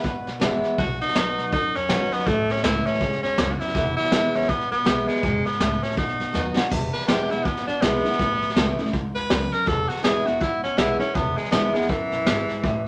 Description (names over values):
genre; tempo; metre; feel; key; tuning
rockabilly; 162 BPM; 4/4; swing 60% on 8ths; E major; A4 = 436 Hz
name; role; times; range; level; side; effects
edgy tenor saxophone; melody; 0.0-12.9 s; E3 to B4; -27 LUFS; equal; none
picked steel-string acoustic guitar; accompaniment; 0.0-12.9 s; E2 to F#4; -28 LUFS; equal; none
upright bass; bass; 0.0-12.9 s; E1 to F#2; -34 LUFS; equal; none
soft brush drum kit; drums; 0.0-12.7 s; crash cymbal, hi-hat, kick drum, snare drum; -28 LUFS; equal; none
room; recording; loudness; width
moderate studio reverb, RT60 0.8 s; none; -23 LUFS; mono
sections
0.0-6.7 A section; 6.7-12.9 B section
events
drum fill 6.3-6.7; tenor saxophone solo 6.7-12.9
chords
0.0 E; 0.8 B; 2.3 A; 3.7 E; 6.0 B; 6.7 E; 8.2 A; 9.7 E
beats
0.04 0.41 | 0.78 1.15 1.52 1.90 | 2.27 2.64 3.01 3.38 | 3.75 4.12 4.49 4.86 | 5.23 5.60 5.97 6.34 | 6.71 7.08 7.45 7.82 | 8.19 8.56 8.93 9.30 | 9.67 10.04 10.41 10.78 | 11.15 11.52 11.89 12.26 | 12.63